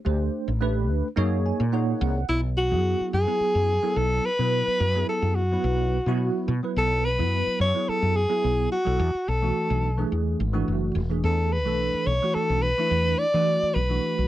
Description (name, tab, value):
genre	jazz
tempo	107 BPM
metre	4/4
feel	straight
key	unclear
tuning	A4 = 441 Hz
part	bell-like tine electric piano	accompaniment	0.0-14.3 s	E3 to G#5	-28 LUFS	right 2 dB	fast stereo tremolo, analog chorus
part	woody fretless electric bass	bass	0.1-14.3 s	E1 to E3	-25 LUFS	equal	wide subtle chorus
part	clear alto saxophone	melody	2.3-14.3 s	E4 to D5	-24 LUFS	equal	none
room	little or no reverb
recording	dry, close 1970s-style studio recording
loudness	-22 LUFS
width	side -14 dB against mid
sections	0.0-2.3 A section; 2.3-14.3 B section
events	tine electric piano fill 1.2-2.3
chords	0.1 D7sus4; 1.2 F#; 2.3 Bsus4; 9.0 E9sus4